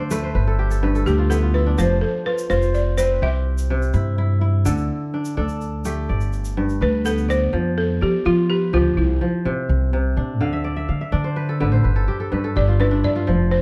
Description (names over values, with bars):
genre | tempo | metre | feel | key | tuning
west african traditional, West African string and xylophone music | 84 BPM (dotted quarters) | 12/8 | straight | unclear | A4 = 440 Hz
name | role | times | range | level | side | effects
kora | arpeggios | 0.0-13.6 s | G2 to F5 | -26 LUFS | equal | none
upright bass | bass | 0.0-13.6 s | F1 to F3 | -22 LUFS | equal | none
tube shaker | percussion | 0.1-7.4 s | none | -42 LUFS | equal | none
balafon | melody | 1.1-13.6 s | E4 to E5 | -24 LUFS | equal | none
room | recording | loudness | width
light reverb | dark, warm production | -20 LUFS | mono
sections
0.0-7.5 A section; 7.5-13.6 B section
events
kora fill 0.0-1.8, 10.4-13.3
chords
0.3 G; 1.8 F5; 3.2 C; 4.7 D5; 6.1 G; 7.5 Dmadd11; 9.0 C; 10.4 D5; 11.8 G13